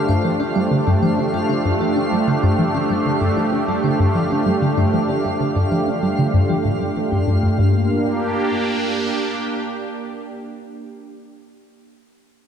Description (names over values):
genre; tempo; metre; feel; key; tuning
ambient, sequencer-driven space music; 96 BPM; 4/4; straight; G minor; A4 = 440 Hz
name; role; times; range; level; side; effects
sweeping resonant pad; sustained chords; 0.0-10.8 s; A3 to G4; -20 LUFS; right 1 dB; chorus
resonant blip pluck; riff; 0.0-7.9 s; G2 to D4; -19 LUFS; equal; phaser, tape echo
twinkling granular texture; texture; 0.0-7.6 s; F4 to F5; -30 LUFS; right 1 dB; built-in reverb
vibraphone with medium hard mallets; arpeggios; 0.1-7.9 s; F4 to C5; -32 LUFS; left 3 dB; auto-pan, tape echo
room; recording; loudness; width
wet lush hall reverb, RT60 2.8 s; dreamy mix soaked in reverb; -16 LUFS; side -8 dB against mid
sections
0.0-7.6 A section; 7.6-10.1 B section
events
fade-out on vibraphone 0.0-7.6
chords
0.0 Gsus2; 7.6 Gm